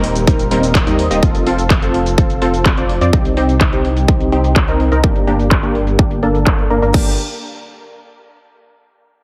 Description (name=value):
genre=EDM, festival progressive house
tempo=126 BPM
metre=4/4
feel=straight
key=G minor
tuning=A4 = 440 Hz
part: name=supersaw stab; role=riff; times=0.0-7.1 s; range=G3 to Eb5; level=-19 LUFS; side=equal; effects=sidechain pumping, low-pass filter, dub echo
part: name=detuned saw bass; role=bass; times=0.0-7.2 s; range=Eb1 to F2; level=-21 LUFS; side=equal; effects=chorus, sidechain pumping
part: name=big-room dance drum kit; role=drums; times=0.0-7.0 s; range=cabasa, crash cymbal, handclaps, hi-hat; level=-26 LUFS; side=equal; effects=overdrive, low-pass filter on hats, low-pass filter on snare, low-pass filter on perc, low-pass filter on cymbals
part: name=electronic kick drum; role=drums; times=0.3-7.0 s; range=none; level=-17 LUFS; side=equal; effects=overdrive
room=moderate recital hall reverb, RT60 1.6 s, digital ambience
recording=heavily compressed radio sound, multiband compression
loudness=-14 LUFS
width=mono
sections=0.0-6.9 A section; 6.9-8.8 B section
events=filter sweep on drum 0.0-6.9; filter sweep on supersaw synth 0.0-6.9; filter sweep on detuned saw bass 0.0-6.9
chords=0.0 Eb6; 1.2 F; 3.1 Cm; 5.0 Gm